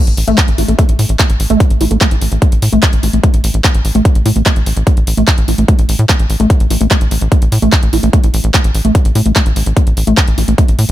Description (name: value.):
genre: psychedelic trance.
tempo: 147 BPM.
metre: 4/4.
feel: straight.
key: unclear.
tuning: A4 = 444 Hz.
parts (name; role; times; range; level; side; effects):
liquid acid bass; riff; 0.0-10.6 s; G3 to E4; -17 LUFS; moving between left 4 dB and right 5 dB; chorus, auto-pan, sidechain pumping, digital delay.
tight sequencer bass; bass; 0.1-10.9 s; A1 to A2; -13 LUFS; equal; none.
big-room dance drum kit; drums; 0.1-10.9 s; handclaps, hi-hat; -18 LUFS; equal; none.
electronic kick drum; drums; 0.4-10.7 s; none; -12 LUFS; equal; none.
room: little or no reverb.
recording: none.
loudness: -9 LUFS.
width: side -13 dB against mid.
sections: 0.0-10.9 A section.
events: filter sweep on acid bass 0.0-10.9.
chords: 0.0 A5.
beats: 0.38 0.79 1.20 | 1.60 2.01 2.42 2.83 | 3.23 3.64 4.05 4.46 | 4.87 5.28 5.68 6.09 | 6.50 6.91 7.32 7.72 | 8.13 8.54 8.95 9.36 | 9.77 10.17 10.58.